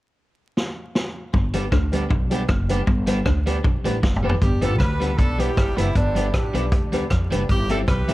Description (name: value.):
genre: ska.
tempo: 156 BPM.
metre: 4/4.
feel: straight.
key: G major.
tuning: A4 = 440 Hz.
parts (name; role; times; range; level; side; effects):
vintage drum kit; drums; 0.6-8.1 s; hi-hat, kick drum, rim click, snare drum, toms; -22 LUFS; equal; none.
electric guitar through a small old amp; riff; 1.3-4.1 s; F#2 to D3; -33 LUFS; left 2 dB; none.
upright bass; bass; 1.3-8.1 s; F#1 to F2; -23 LUFS; equal; none.
electric guitar at the edge of break-up; accompaniment; 1.5-8.1 s; G3 to G4; -28 LUFS; right 2 dB; lush chorus, dub echo.
dark upright piano; stabs; 1.5-8.1 s; C4 to B4; -29 LUFS; left 2 dB; none.
warm horn section; melody; 4.4-8.1 s; B3 to B4; -27 LUFS; right 1 dB; dub echo.
room: little or no reverb.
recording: dark, warm production, vinyl crackle.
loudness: -19 LUFS.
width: side -17 dB against mid.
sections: 0.0-1.3 A section; 1.3-4.4 B section; 4.4-8.1 C section.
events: drum fill 0.6-1.3, 4.0-4.4.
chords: 0.0 N.C.; 1.3 G; 7.5 C.